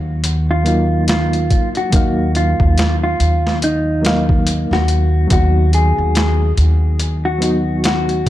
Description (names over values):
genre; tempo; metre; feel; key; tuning
trip hop; 71 BPM; 4/4; swing 59% on 16ths; Eb minor; A4 = 440 Hz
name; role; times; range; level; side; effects
reed electric piano; accompaniment; 0.0-8.3 s; Gb3 to F5; -21 LUFS; equal; tremolo, tape echo
upright bass; bass; 0.0-8.2 s; Eb2; -16 LUFS; equal; none
boom bap sampler-style drum kit; drums; 0.2-8.3 s; hi-hat, kick drum, snare drum; -18 LUFS; equal; overdrive
mellow electric guitar; melody; 0.5-8.3 s; Eb4 to Ab4; -20 LUFS; left 1 dB; tape echo
room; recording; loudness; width
little or no reverb; dark, warm production; -13 LUFS; side -14 dB against mid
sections
0.0-8.3 A section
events
none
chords
0.0 Ebmadd9; 5.3 B/D#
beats
0.23 1.08 | 1.93 2.77 3.62 4.46 | 5.30 6.15 7.00 7.84